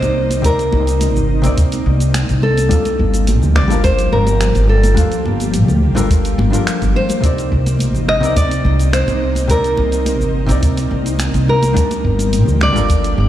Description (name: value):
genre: sunset chillout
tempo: 106 BPM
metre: 4/4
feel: straight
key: C minor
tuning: A4 = 442 Hz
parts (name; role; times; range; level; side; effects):
- nylon-string guitar; melody; 0.0-13.3 s; A4 to Eb5; -19 LUFS; equal; ping-pong delay
- hollow-body jazz guitar; accompaniment; 0.0-13.3 s; C3 to A5; -21 LUFS; left 1 dB; auto-pan
- ethereal airy pad; sustained chords; 0.0-13.3 s; F3 to G4; -23 LUFS; left 1 dB; ensemble chorus, built-in reverb
- upright bass; bass; 0.0-13.3 s; G1 to D2; -16 LUFS; equal; none
- smooth R&B drum kit; drums; 0.0-13.2 s; finger snaps, hi-hat, shaker; -26 LUFS; equal; none
- congas; percussion; 0.0-13.3 s; none; -26 LUFS; right 1 dB; none
- electronic kick drum; drums; 0.4-13.0 s; none; -16 LUFS; equal; none
room: light reverb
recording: played on a big sound system in a bare room, large studio reverb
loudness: -12 LUFS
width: side -12 dB against mid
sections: 0.0-13.3 A section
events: none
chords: 0.0 Cm9; 2.7 Gm9; 7.2 Cm9; 11.8 Gm9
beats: | 0.44 1.01 1.57 2.14 | 2.71 3.27 3.84 4.41 | 4.97 5.54 6.10 6.67 | 7.24 7.80 8.37 8.93 | 9.50 10.06 10.63 11.20 | 11.76 12.33 12.90